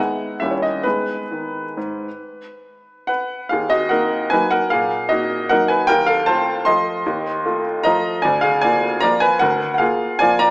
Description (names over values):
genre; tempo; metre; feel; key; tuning
classical, piano waltz; 130-161 BPM; 3/4; rubato; G# minor, Eb minor from 3.5 s; A4 = 444 Hz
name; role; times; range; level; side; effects
clear upright piano; solo; 0.0-10.5 s; D2 to C6; -16 LUFS; equal; none
room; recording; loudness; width
moderate scoring stage reverb, RT60 2.0 s; small speaker sound; -16 LUFS; side -25 dB against mid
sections
0.0-3.5 A section; 3.5-10.5 B section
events
none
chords
0.4 D#7b9; 0.9 G#m; 3.5 Ebm; 5.9 F7/Eb; 8.2 Bb7/D